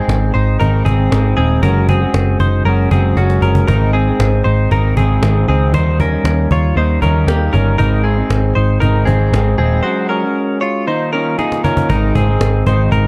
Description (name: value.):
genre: jangly indie pop.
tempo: 117 BPM.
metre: 4/4.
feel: straight.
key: Ab major.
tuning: A4 = 440 Hz.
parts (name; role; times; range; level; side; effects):
electric guitar through a small old amp; accompaniment; 0.0-13.1 s; Ab2 to Gb4; -21 LUFS; equal; none.
direct-recorded clean electric guitar; arpeggios; 0.0-13.1 s; Bb3 to Db5; -21 LUFS; equal; analog chorus, digital delay.
vintage muted picked electric bass; bass; 0.1-13.1 s; Eb1 to Eb2; -16 LUFS; equal; none.
cajon; drums; 0.1-13.0 s; none; -23 LUFS; equal; none.
room: light reverb.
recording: dark, warm production.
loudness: -14 LUFS.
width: mono.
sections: 0.0-11.9 A section; 11.9-13.1 B section.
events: drum fill 3.2-3.7, 11.4-11.9; break 9.8-11.9.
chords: 0.0 Ab; 1.6 Gbsus2; 3.7 Ab; 5.7 Eb; 7.8 Ab; 9.8 Gbsus2; 10.9 Ebsus2; 11.9 Ab.